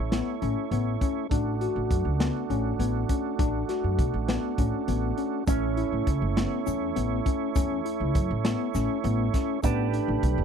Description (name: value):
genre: progressive instrumental, band music in an uneven meter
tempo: 202 BPM (eighths)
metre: 7/8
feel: straight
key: A mixolydian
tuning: A4 = 441 Hz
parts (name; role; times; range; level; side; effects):
- tonewheel organ; accompaniment; 0.0-10.4 s; A3 to C#5; -31 LUFS; right 18 dB; chorus vibrato
- upright bass; bass; 0.0-10.4 s; E1 to B2; -28 LUFS; equal; none
- tine electric piano; arpeggios; 0.1-10.4 s; B3 to F#4; -30 LUFS; left 18 dB; medium tremolo
- crunchy breakbeat drum kit; drums; 0.1-10.4 s; hi-hat, kick drum, snare drum; -28 LUFS; equal; none
- electric guitar with an envelope filter; second line; 5.5-10.4 s; C#4 to D4; -34 LUFS; right 16 dB; none
- tube shaker; percussion; 5.5-10.4 s; none; -47 LUFS; left 20 dB; none
room: light reverb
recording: dry, close 1970s-style studio recording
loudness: -24 LUFS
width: side -7 dB against mid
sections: 0.0-10.4 A section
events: tonewheel organ fill 0.4-1.3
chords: 0.0 A; 1.3 D/A; 5.5 A; 9.6 Gadd9